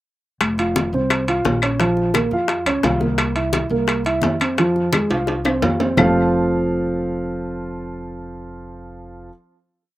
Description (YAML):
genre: latin, salsa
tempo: 172 BPM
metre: 4/4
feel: straight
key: unclear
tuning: A4 = 439 Hz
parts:
  - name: upright bass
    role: bass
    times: 0.4-9.3 s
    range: F1 to F2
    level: -26 LUFS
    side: left 1 dB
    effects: none
  - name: bongos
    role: percussion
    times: 0.4-6.1 s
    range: none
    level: -26 LUFS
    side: left 7 dB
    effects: slapback echo
  - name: claves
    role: percussion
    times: 0.4-6.1 s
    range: none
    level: -25 LUFS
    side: left 10 dB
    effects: none
  - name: congas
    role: percussion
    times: 0.4-6.1 s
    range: none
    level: -27 LUFS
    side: left 2 dB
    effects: none
  - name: timbales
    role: percussion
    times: 0.4-6.1 s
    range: none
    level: -24 LUFS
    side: right 2 dB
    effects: slapback echo
  - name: dark baby grand piano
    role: accompaniment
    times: 0.6-9.3 s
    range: F3 to F5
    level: -20 LUFS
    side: right 1 dB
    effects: none
room: little or no reverb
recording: recorded outdoors, with no room sound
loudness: -17 LUFS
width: side -15 dB against mid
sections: 0.4-6.0 A section; 6.0-8.8 final chord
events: drum fill 5.1-6.0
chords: 0.4 F5; 1.8 Bbm; 3.2 C7; 4.6 Fm; 6.0 F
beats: | 0.41 0.76 1.11 1.45 | 1.80 2.15 2.50 2.84 | 3.19 3.54 3.88 4.23 | 4.58 4.93 5.28 5.62 | 5.97 6.32 6.67 7.02 | 7.37 7.72 8.07 8.42